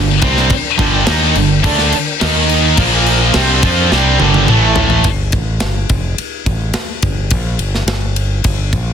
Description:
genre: hard rock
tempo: 106 BPM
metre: 4/4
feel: straight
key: G minor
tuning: A4 = 440 Hz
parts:
  - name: tonewheel organ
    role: sustained chords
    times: 0.0-5.1 s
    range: D4 to Bb5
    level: -26 LUFS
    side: right 1 dB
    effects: none
  - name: heavy high-gain guitar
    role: riff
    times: 0.0-5.1 s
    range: G2 to F4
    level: -16 LUFS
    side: left 14 dB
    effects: distortion
  - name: sludgy distorted guitar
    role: riff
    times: 0.0-5.0 s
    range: G2 to F4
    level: -19 LUFS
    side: right 2 dB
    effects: overdrive
  - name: tight distorted guitar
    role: riff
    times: 0.0-5.0 s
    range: G2 to F4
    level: -17 LUFS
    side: right 13 dB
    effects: distortion
  - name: growling fingered electric bass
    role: bass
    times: 0.0-8.9 s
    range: F1 to F2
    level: -16 LUFS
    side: equal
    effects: overdrive
  - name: tight metal drum kit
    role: drums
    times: 0.2-8.9 s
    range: crash cymbal, kick drum, ride cymbal, snare drum, toms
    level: -16 LUFS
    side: left 1 dB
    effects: soft clipping on kick
room: studio ambience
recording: dense, heavily limited modern master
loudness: -11 LUFS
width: side -8 dB against mid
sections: 0.0-5.0 A section; 5.0-8.9 B section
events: drum fill 3.9-5.0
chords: 0.0 Gm; 2.2 Eb5; 2.8 Bb5; 3.3 Gm; 4.5 A5; 5.0 Gm

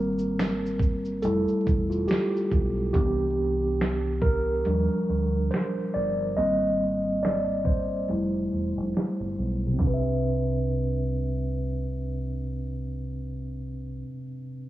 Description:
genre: lo-fi hip hop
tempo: 70 BPM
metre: 4/4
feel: swing 58% on 16ths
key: C major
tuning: A4 = 439 Hz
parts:
  - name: mellow tine electric piano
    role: accompaniment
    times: 0.0-14.7 s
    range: C3 to E5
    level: -26 LUFS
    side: equal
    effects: medium stereo tremolo, cassette tape, low-pass filter
  - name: deep dub fingered electric bass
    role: bass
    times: 0.0-14.0 s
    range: E1 to Eb2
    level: -31 LUFS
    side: equal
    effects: none
  - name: dusty soul sampler-style drum kit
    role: drums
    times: 0.2-10.0 s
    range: finger snaps, handclaps, hi-hat, kick drum, shaker, snare drum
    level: -27 LUFS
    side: equal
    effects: cassette tape
room: light reverb, digital ambience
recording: home recording on cassette, vinyl crackle, low-pass filter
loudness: -24 LUFS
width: side -14 dB against mid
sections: 0.0-9.8 A section; 9.8-13.2 B section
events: tine electric piano solo 0.0-9.8; filter sweep 0.0-9.8; break 8.1-9.8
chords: 0.0 Abmaj9; 1.2 Fmaj9; 2.9 Cmaj9; 4.7 Ebmaj9; 6.4 Abmaj9; 8.1 Fmaj9; 9.8 Cmaj9

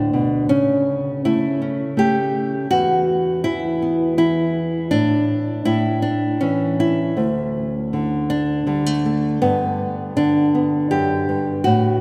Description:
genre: folk, solo fingerstyle acoustic guitar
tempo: 81 BPM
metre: 3/4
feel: rubato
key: unclear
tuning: A4 = 441 Hz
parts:
  - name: nylon-string guitar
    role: solo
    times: 0.0-12.0 s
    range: D2 to G4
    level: -20 LUFS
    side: equal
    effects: none
room: wet cathedral reverb, RT60 4.6 s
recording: recorded in a church or concert hall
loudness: -20 LUFS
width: mono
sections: 0.0-12.0 A section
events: none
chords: 0.5 A/C#; 2.7 E5; 4.9 N.C.; 5.7 A; 7.2 Dsus2; 9.4 G

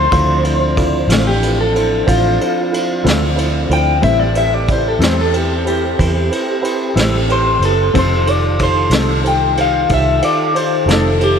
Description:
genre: slow blues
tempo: 61 BPM (dotted quarters)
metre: 12/8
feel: straight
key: A minor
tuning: A4 = 443 Hz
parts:
  - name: electric guitar through a small old amp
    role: melody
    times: 0.0-11.4 s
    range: F4 to G5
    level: -17 LUFS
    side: left 2 dB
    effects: lush chorus
  - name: dark upright piano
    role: accompaniment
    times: 0.0-11.4 s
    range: Eb4 to D5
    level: -22 LUFS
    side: right 5 dB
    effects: none
  - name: tonewheel organ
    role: sustained chords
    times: 0.0-11.4 s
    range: Eb3 to A4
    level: -22 LUFS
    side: equal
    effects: overdrive, slow rotary speaker
  - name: vintage muted fingered electric bass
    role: bass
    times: 0.0-11.4 s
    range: F1 to E2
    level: -17 LUFS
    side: equal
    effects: none
  - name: vintage brush drum kit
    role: drums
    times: 0.1-11.4 s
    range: kick drum, ride cymbal, snare drum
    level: -20 LUFS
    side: equal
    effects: none
  - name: mellow electric guitar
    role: accompaniment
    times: 1.1-11.1 s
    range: A2 to A4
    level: -24 LUFS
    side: left 5 dB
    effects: harmonic tremolo
room: moderate huge ambient reverb, RT60 4.9 s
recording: dreamy mix soaked in reverb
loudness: -12 LUFS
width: side -7 dB against mid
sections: 0.0-11.4 A section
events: clean electric guitar solo 0.0-11.4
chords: 0.0 Dm7; 4.0 Am7; 7.9 F7

